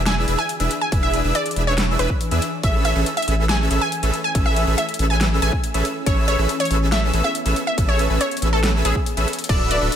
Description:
future bass; 140 BPM; 4/4; half-time; A major; A4 = 440 Hz
shimmering ambient pad; sustained chords; 0.0-9.5 s; E3 to G#4; -31 LUFS; left 1 dB; chorus, built-in reverb, phaser, sidechain pumping
airy dreamy lead; arpeggios; 0.0-9.9 s; E6; -29 LUFS; equal; chorus, sidechain pumping
supersaw chords; riff; 0.0-9.9 s; C#4 to E5; -25 LUFS; right 1 dB; sidechain pumping
saturated sub bass; bass; 0.0-9.9 s; D1 to E2; -21 LUFS; equal; sidechain pumping
wide unison pluck; melody; 0.1-10.0 s; G#4 to G#5; -24 LUFS; right 1 dB; sidechain pumping, dub echo
dubstep drum kit; drums; 0.1-10.0 s; crash cymbal, hi-hat, snare drum; -26 LUFS; left 1 dB
electronic kick drum; drums; 0.9-9.6 s; -21 LUFS; equal
digital ambience; -17 LUFS; side -9 dB against mid
0.0-9.5 A section
drop 0.0-9.5; break 9.1-9.5; drum fill 9.3
0.0 E7; 2.6 Amaj9

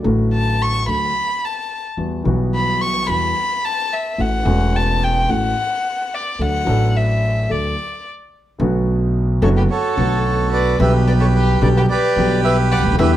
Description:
tango; 109 BPM; 4/4; rubato; D major, B minor from 8.6 s; A4 = 440 Hz
dark concert grand piano; accompaniment; 0.0-13.2 s; E1 to A4; -19 LUFS; left 1 dB
upright bass; bass; 0.0-13.2 s; E1 to E2; -20 LUFS; right 1 dB
warm violin; second line; 0.3-13.1 s; G4 to C#6; -21 LUFS; left 2 dB
bandoneon; melody; 9.4-13.2 s; F#4 to F#5; -19 LUFS; right 3 dB; slapback echo
moderate studio reverb, RT60 0.9 s; -15 LUFS; side -12 dB against mid
0.0-8.6 A section; 8.6-13.2 B section
violin solo 0.0-8.6
0.0 D; 2.0 Emadd9; 4.2 A6; 6.4 D; 8.6 Bm7; 10.8 G/B

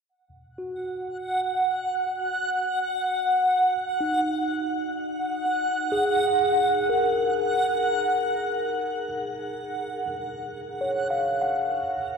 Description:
ambient; 62 BPM; 3/4; straight; A4 = 438 Hz
backwards swelling texture; texture; 1.0-12.2 s; F#5 to A#6; -25 LUFS; equal; built-in reverb, shimmer reverb
mellow tine electric piano; arpeggios; 0.6-12.2 s; D#4 to F#5; -28 LUFS; equal; medium stereo tremolo, ping-pong delay, shimmer reverb
wet lush hall reverb, RT60 3.1 s; dark, warm production; -23 LUFS; side -5 dB against mid
0.1-12.2 A section
fade-in on tine electric piano 0.1-12.2; fade-out on synth texture 0.1-12.2
0.1 D#m; 5.9 F#

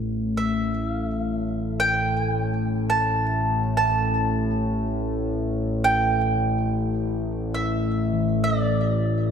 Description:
world meditative, free-time meditation music; free time; A4 = 441 Hz
analog drone; drone; 0.0-9.3 s; A1 to A2; -23 LUFS; left 1 dB; chorus
mandolin; melody; 0.4-9.3 s; D5 to A5; -25 LUFS; right 2 dB; ping-pong delay
quartz singing bowl; texture; 8.1-9.3 s; E3; -28 LUFS; left 3 dB
wet church reverb, RT60 2.8 s; dark, warm production; -21 LUFS; side -7 dB against mid
0.0-9.3 A section

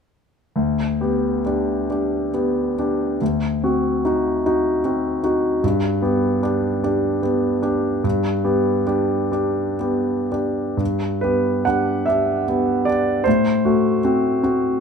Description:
classical, romantic nocturne for solo piano; 37-52 BPM (dotted quarters); 6/8; rubato; G major; A4 = 440 Hz
clear grand piano; solo; 0.6-14.8 s; D2 to F#5; -18 LUFS; equal
light reverb; minimal, uncompressed stereo recording; -18 LUFS; side -6 dB against mid
0.5-10.8 A section; 10.8-14.8 B section
0.5 G/D; 3.2 D7b9; 5.6 G; 13.3 F#dim/A

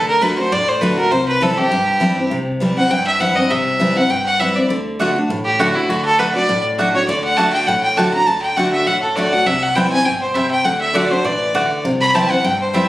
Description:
bluegrass; 201 BPM; 4/4; swing 54% on 8ths; D mixolydian; A4 = 440 Hz
clear fiddle; melody; 0.0-12.9 s; E4 to B5; -16 LUFS; equal; plate reverb
picked steel-string acoustic guitar; accompaniment; 0.0-12.9 s; G2 to F#4; -18 LUFS; left 1 dB
upright bass; bass; 0.0-12.8 s; G1 to E2; -30 LUFS; right 1 dB
mandolin; stabs; 5.0-12.8 s; A3 to G5; -21 LUFS; right 1 dB
moderate studio reverb, RT60 0.6 s; recorded on a phone in the room, studio reverb, compression; -14 LUFS; side -15 dB against mid
0.0-12.9 A section
0.0 D; 1.1 C; 4.7 D; 9.5 C; 10.7 D; 11.9 C

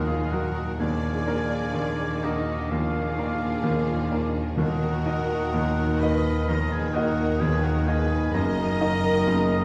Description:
classical; 64 BPM; 4/4; rubato; Eb minor; A4 = 441 Hz
bright baby grand piano; melody; 0.0-9.6 s; Gb1 to Eb5; -29 LUFS; equal
clear studio violin section; melody; 0.0-9.6 s; Gb4 to Eb5; -42 LUFS; equal
mellow clarinet; second line; 0.0-9.6 s; Bb4; -41 LUFS; equal
rich studio violin section; second line; 0.0-9.6 s; Gb4 to Eb5; -41 LUFS; equal
small flute group; second line; 0.0-9.6 s; D6 to Eb6; -41 LUFS; equal
warm oboe; second line; 0.0-9.6 s; Eb5 to Cb6; -35 LUFS; equal
rich studio viola section; accompaniment; 0.0-9.6 s; Eb4 to Cb5; -36 LUFS; equal
mellow French horn section; sustained chords; 0.0-9.6 s; Bb3 to Eb4; -35 LUFS; equal
warm trombone section; sustained chords; 0.0-9.6 s; Gb2 to F3; -38 LUFS; equal
rich studio double bass section; bass; 0.0-9.6 s; Gb1 to Eb2; -33 LUFS; equal
rich symphonic cello section; bass; 0.0-9.6 s; Gb2 to Eb3; -35 LUFS; equal
timpani; percussion; 4.6-6.0 s; Eb3; -34 LUFS; equal
wet recital hall reverb, RT60 1.7 s; heard from further back in the room, vinyl crackle; -25 LUFS; mono
0.0-9.6 A section
0.0 Ebm; 0.8 Bb7/Eb; 4.6 Ebm; 8.3 Ebm/Gb

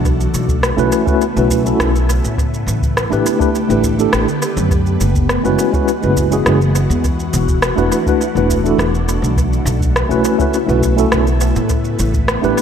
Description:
sunset chillout; 103 BPM; 4/4; straight; A4 = 440 Hz
ethereal airy pad; sustained chords; 0.0-12.6 s; C#3 to G4; -21 LUFS; left 1 dB; ensemble chorus, built-in reverb, phaser
upright bass; bass; 0.0-12.5 s; E1 to A2; -17 LUFS; equal
electronic kick drum; drums; 0.0-12.3 s; -19 LUFS; equal
electronic shaker and rim click; drums; 0.1-12.6 s; -21 LUFS; equal; overdrive, tape echo
mellow tine electric piano; accompaniment; 0.8-12.6 s; G#3 to B4; -17 LUFS; moving between left 4 dB and right 5 dB; medium stereo tremolo, auto-pan, analog delay
moderate echo chamber reverb, RT60 2.3 s; echo-heavy mix; -13 LUFS; side -8 dB against mid
0.0-12.6 A section
0.1 B9sus4; 2.4 A9sus4; 4.7 F#9sus4; 7.0 E9sus4; 9.4 B9sus4; 11.7 A9sus4

